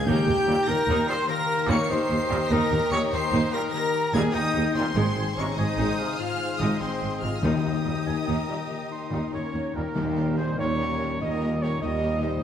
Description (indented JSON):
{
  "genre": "cinematic, heroic adventure film score",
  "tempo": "98 BPM (dotted quarters)",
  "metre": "12/8",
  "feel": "straight",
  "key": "Eb mixolydian",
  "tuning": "A4 = 441 Hz",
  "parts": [
    { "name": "clear symphonic violin section", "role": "melody", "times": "0.0-12.4 s", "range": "G4 to Db7", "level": "-34 LUFS", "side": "left 3 dB", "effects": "none" },
    { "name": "rich symphonic violin section", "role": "second line", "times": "0.0-12.3 s", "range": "G4 to C5", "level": "-37 LUFS", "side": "left 4 dB", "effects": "none" },
    { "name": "warm oboe", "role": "second line", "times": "0.0-12.4 s", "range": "Bb4 to C6", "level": "-36 LUFS", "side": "right 1 dB", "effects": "none" },
    { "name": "rich studio viola section", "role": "accompaniment", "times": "0.0-12.3 s", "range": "Eb3 to Eb4", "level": "-33 LUFS", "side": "equal", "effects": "none" },
    { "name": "mellow French horn section", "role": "sustained chords", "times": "0.0-12.3 s", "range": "Bb3 to Db5", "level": "-33 LUFS", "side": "left 2 dB", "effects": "none" },
    { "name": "concert harp", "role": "arpeggios", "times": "0.0-12.4 s", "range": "Ab2 to Bb5", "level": "-34 LUFS", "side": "left 10 dB", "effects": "none" },
    { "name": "mellow trumpet", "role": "stabs", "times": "0.0-12.3 s", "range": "C4 to Eb5", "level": "-31 LUFS", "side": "right 1 dB", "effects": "none" },
    { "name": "concert flute", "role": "second line", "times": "0.1-12.3 s", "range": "Bb4 to Db6", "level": "-35 LUFS", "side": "left 2 dB", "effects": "none" },
    { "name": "mellow tuba", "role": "bass", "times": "0.1-12.4 s", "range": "Ab1 to Eb2", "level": "-32 LUFS", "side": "right 2 dB", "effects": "none" },
    { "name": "rich symphonic cello section", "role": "bass", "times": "0.1-12.4 s", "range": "Eb2 to Ab2", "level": "-32 LUFS", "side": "right 1 dB", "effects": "none" },
    { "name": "rich symphonic double bass section", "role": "bass", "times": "0.1-12.4 s", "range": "Ab1 to Eb2", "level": "-31 LUFS", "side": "right 2 dB", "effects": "none" },
    { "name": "clear trombone section", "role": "sustained chords", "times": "0.5-12.4 s", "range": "Bb2 to Ab3", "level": "-37 LUFS", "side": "right 2 dB", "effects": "none" },
    { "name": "timpani", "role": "percussion", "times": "7.4-10.5 s", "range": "Eb3", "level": "-30 LUFS", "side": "left 4 dB", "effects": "none" }
  ],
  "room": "wet scoring stage reverb, RT60 1.8 s",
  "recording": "none",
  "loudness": "-23 LUFS",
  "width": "side -9 dB against mid",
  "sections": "0.0-10.0 A section; 10.0-12.4 B section",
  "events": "none",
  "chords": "0.1 Eb; 5.0 Ab; 7.4 Eb"
}